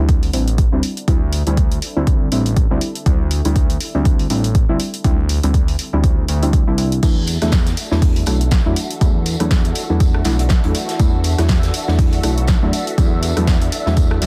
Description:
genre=deep house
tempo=121 BPM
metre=4/4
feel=swing 57% on 16ths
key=E minor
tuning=A4 = 440 Hz
part: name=deep mellow chord stab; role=stabs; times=0.0-14.2 s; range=F#3 to E4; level=-24 LUFS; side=equal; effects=chorus, sidechain pumping, dub echo
part: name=smooth gliding synth bass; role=bass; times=0.0-14.3 s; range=A1 to E2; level=-21 LUFS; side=equal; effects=tube saturation, sidechain pumping
part: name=deep dark ambient pad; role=texture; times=0.3-14.3 s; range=D4 to F#5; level=-38 LUFS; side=equal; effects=none
part: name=deep house drum kit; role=drums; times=0.1-14.3 s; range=crash cymbal, hi-hat, rim click, snare drum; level=-28 LUFS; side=equal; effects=overdrive
part: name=electronic kick drum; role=drums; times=0.1-14.1 s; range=none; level=-18 LUFS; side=equal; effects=overdrive
part: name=soft string machine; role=sustained chords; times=7.0-14.3 s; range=D4 to E5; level=-30 LUFS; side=equal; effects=phaser, ensemble chorus, vintage 12-bit sampler grit, sidechain pumping
part: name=huge arena drum kit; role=drums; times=7.0-14.3 s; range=hi-hat, snare drum, tambourine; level=-34 LUFS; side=equal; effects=sidechain pumping on hats, high-pass filter on hats, high-pass filter on snare, sidechain pumping on perc, high-pass filter on perc, high-pass filter on room
room=digital ambience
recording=dense, heavily limited modern master, vinyl crackle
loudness=-17 LUFS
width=mono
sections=0.0-14.3 A section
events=none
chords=0.0 D9sus4; 7.0 E9sus4

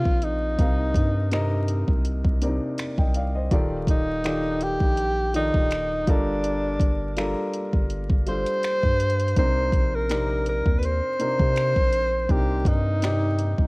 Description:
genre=contemporary R&B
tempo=82 BPM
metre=4/4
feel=swing 54% on 16ths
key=C dorian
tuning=A4 = 440 Hz
part: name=breathy tenor saxophone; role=melody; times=0.0-13.7 s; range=D4 to C5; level=-25 LUFS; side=equal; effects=cassette tape, analog delay
part: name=warm grand piano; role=accompaniment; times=0.0-13.7 s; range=C3 to G5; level=-29 LUFS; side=equal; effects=cassette tape
part: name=long sustained 808-style bass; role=bass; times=0.0-13.7 s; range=Eb1 to C3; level=-26 LUFS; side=equal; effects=none
part: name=smooth R&B drum kit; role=drums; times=0.1-13.7 s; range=finger snaps, hi-hat, kick drum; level=-22 LUFS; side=equal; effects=cassette tape
room=digital ambience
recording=home recording on cassette, vinyl crackle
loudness=-21 LUFS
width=side -28 dB against mid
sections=0.0-13.7 A section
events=none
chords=0.0 Cm7; 3.5 Ebmaj9#11; 6.1 Gm7; 9.4 Cm7

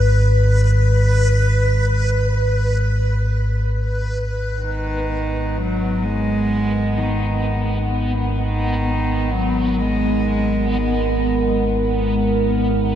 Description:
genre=ambient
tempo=free time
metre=none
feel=none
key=G# minor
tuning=A4 = 440 Hz
part: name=deep rumbling drone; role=drone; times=0.0-13.0 s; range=G#1 to G#2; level=-19 LUFS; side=equal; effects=built-in reverb, lush chorus
part: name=backwards swelling texture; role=texture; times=0.0-13.0 s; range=B3 to B4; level=-23 LUFS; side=left 1 dB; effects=built-in reverb, shimmer reverb
part: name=dark analog pad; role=sustained chords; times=4.8-13.0 s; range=G#3 to A#4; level=-25 LUFS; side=right 3 dB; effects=chorus, phaser, shimmer reverb
part: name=rich cello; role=melody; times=4.6-11.4 s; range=D#3 to G#3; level=-23 LUFS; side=equal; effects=shimmer reverb, diffuse ambient delay
room=wet huge ambient reverb, RT60 7.5 s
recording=dark, warm production, nothing above 10.7 kHz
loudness=-17 LUFS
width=side -10 dB against mid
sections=0.0-4.2 A section; 4.2-13.0 B section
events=none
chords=0.0 G#m; 4.2 G#madd9

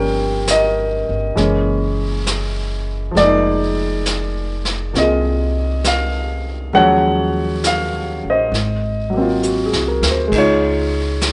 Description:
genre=jazz ballad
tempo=67 BPM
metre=4/4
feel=swing 68% on 8ths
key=unclear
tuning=A4 = 445 Hz
part: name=warm baby grand piano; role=accompaniment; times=0.0-11.3 s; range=E3 to G5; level=-19 LUFS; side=equal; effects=none
part: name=upright bass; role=bass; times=0.0-11.3 s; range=F1 to Eb2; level=-24 LUFS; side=equal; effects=none
part: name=vintage brush drum kit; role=drums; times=0.5-11.3 s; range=brushed snare drum, hi-hat, kick drum, ride cymbal, snare drum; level=-26 LUFS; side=equal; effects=none
room=moderate large studio reverb, RT60 1.2 s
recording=nothing above 10.6 kHz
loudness=-18 LUFS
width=mono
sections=0.0-11.3 A section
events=drum fill 9.4-10.3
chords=0.0 Gm7b5; 1.4 F#9; 3.2 Fm7; 6.7 Ebm11; 8.5 Ab13; 10.3 Dbadd9

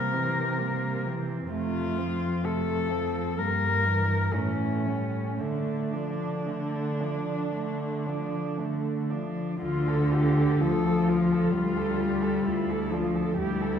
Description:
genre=classical, lyrical piece for cello ensemble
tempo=55-66 BPM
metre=4/4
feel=rubato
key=D minor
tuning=A4 = 440 Hz
part: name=muted cello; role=melody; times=0.0-13.8 s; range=C#4 to Bb4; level=-32 LUFS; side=left 3 dB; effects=none
part: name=muted cello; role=second line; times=0.0-13.8 s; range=G3 to A4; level=-33 LUFS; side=right 4 dB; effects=none
part: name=muted cello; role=accompaniment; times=0.0-13.8 s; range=C3 to G3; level=-28 LUFS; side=left 1 dB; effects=none
part: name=muted cello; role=bass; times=0.0-13.8 s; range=D2 to D3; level=-32 LUFS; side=right 2 dB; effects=none
room=wet recital hall reverb, RT60 1.6 s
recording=heard from further back in the room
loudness=-25 LUFS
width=side -8 dB against mid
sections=0.0-9.6 A section; 9.6-13.8 A section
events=none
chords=0.0 C7; 1.5 F; 3.4 Edim/G; 4.4 A7; 5.4 Dm

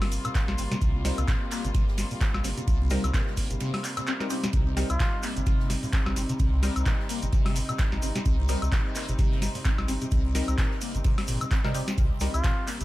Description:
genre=acid house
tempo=129 BPM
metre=4/4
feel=swing 57% on 16ths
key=C minor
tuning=A4 = 443 Hz
part: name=warm studio string section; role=sustained chords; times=0.0-12.8 s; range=C3 to G4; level=-35 LUFS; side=equal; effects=sidechain pumping
part: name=band-passed chord stab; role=stabs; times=0.0-12.4 s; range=G3 to Bb4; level=-37 LUFS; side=left 2 dB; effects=phaser, digital delay
part: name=saturated sub bass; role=bass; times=0.0-12.8 s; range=G1 to C2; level=-28 LUFS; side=equal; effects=sidechain pumping
part: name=booming analog drum machine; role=drums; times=0.0-12.8 s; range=handclaps, hi-hat, snare drum, woodblock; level=-32 LUFS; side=equal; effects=none
part: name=street-band drum kit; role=drums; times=0.1-12.8 s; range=ride cymbal, snare drum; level=-46 LUFS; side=right 3 dB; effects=none
part: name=cabasa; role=percussion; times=0.1-12.8 s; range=none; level=-41 LUFS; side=left 3 dB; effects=none
part: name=liquid acid bass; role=riff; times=0.2-12.8 s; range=C2 to C4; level=-34 LUFS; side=equal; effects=phaser, lush chorus, sidechain pumping, digital delay
part: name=electronic kick drum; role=drums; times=0.3-12.5 s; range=none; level=-26 LUFS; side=equal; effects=none
part: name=trumpet with cup mute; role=melody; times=4.9-5.2, 12.3-12.7 s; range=F4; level=-36 LUFS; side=equal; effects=tape echo
room=light reverb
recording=none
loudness=-24 LUFS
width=side -17 dB against mid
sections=0.0-12.8 A section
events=break 3.6-4.5; drum fill 4.2-4.5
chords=0.0 Cm7

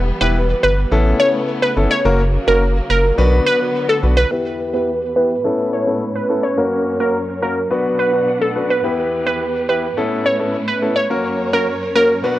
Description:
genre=dancehall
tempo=106 BPM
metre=4/4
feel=straight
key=unclear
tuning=A4 = 439 Hz
part: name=warm studio string section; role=sustained chords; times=0.0-12.4 s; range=E2 to F#5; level=-25 LUFS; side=equal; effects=low-pass filter
part: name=round analog bass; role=bass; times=0.0-4.3 s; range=E1 to B1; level=-16 LUFS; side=equal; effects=none
part: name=glassy wavetable pluck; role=melody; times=0.2-12.2 s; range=A4 to C#5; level=-18 LUFS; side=right 1 dB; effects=chorus, low-pass filter, tape echo
part: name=warm concert grand piano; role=accompaniment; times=0.2-12.4 s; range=A#3 to B4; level=-20 LUFS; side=left 2 dB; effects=low-pass filter
room=light reverb, studio reverb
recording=dry, gritty hardware recording, cassette tape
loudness=-15 LUFS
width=side -15 dB against mid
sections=0.0-4.3 A section; 4.3-12.4 B section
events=filter sweep 4.3-12.4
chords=0.0 Em; 0.9 Aadd9; 2.0 F#; 3.2 Bm; 4.3 Em; 5.4 Aadd9; 6.6 F#; 7.7 Bm; 8.8 Em; 10.0 Aadd9; 11.1 F#

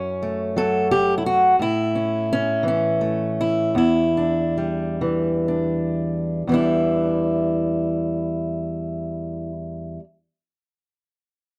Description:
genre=folk, solo fingerstyle acoustic guitar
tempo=38-58 BPM (dotted quarters)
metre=6/8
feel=rubato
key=E dorian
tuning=A4 = 440 Hz
part: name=fingerpicked acoustic archtop guitar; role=solo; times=0.0-10.0 s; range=E2 to A4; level=-22 LUFS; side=equal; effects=none
room=moderate studio reverb, RT60 0.5 s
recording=dark, warm production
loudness=-22 LUFS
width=mono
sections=0.0-6.5 A section; 6.5-11.6 B section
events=slowing down 1.6-6.5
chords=0.0 F#m; 1.6 A; 3.8 Em7

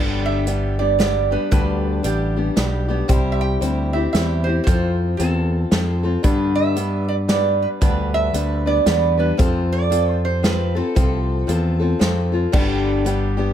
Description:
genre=honky-tonk and classic country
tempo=114 BPM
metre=3/4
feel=swing 62% on 8ths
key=G mixolydian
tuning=A4 = 440 Hz
part: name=picked old ladder-braced acoustic guitar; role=accompaniment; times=0.0-13.5 s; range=G2 to B4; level=-22 LUFS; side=left 4 dB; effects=none
part: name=modern bright picked electric bass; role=bass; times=0.0-13.5 s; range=G1 to G2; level=-21 LUFS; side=equal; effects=none
part: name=lap resonator guitar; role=second line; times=0.3-12.0 s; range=G4 to G5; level=-23 LUFS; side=right 6 dB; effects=none
part: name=natural country drum kit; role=drums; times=0.5-13.2 s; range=crash cymbal, hi-hat, kick drum, snare drum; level=-20 LUFS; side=equal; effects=none
room=light reverb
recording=close, detailed microphones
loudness=-17 LUFS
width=side -10 dB against mid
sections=0.0-12.5 A section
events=resonator guitar played with a steel bar solo 0.0-12.5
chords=0.0 G; 3.1 C; 4.7 F; 6.2 G; 9.4 F; 12.5 G

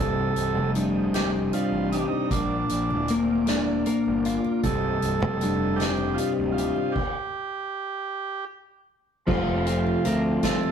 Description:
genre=psychedelic rock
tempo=52 BPM (dotted quarters)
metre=6/8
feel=straight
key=C dorian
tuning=A4 = 440 Hz
part: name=overdriven combo organ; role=melody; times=0.0-10.7 s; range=D4 to Bb4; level=-29 LUFS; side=right 5 dB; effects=none
part: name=tonewheel organ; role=sustained chords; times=0.0-10.7 s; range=Bb4 to Eb6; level=-39 LUFS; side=right 4 dB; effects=slow rotary speaker, chorus vibrato
part: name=twelve-string electric guitar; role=riff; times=0.0-10.7 s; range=C2 to F4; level=-24 LUFS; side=left 2 dB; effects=none
part: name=fuzz fingered electric bass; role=bass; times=0.0-10.4 s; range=C1 to D2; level=-30 LUFS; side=right 1 dB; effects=overdrive
part: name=congas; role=percussion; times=0.2-10.7 s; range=none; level=-40 LUFS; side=right 2 dB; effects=none
part: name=soft-mallet drum kit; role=drums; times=0.4-10.6 s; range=crash cymbal, hi-hat, kick drum, snare drum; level=-31 LUFS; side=equal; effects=none
room=moderate stone room reverb, RT60 1.2 s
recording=rough rehearsal-room recording, tube saturation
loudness=-23 LUFS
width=side -8 dB against mid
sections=0.0-9.3 A section; 9.3-10.7 B section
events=stop 7.0-9.3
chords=0.0 Cm; 2.3 Bb; 4.6 Cm; 7.0 N.C.; 9.3 F

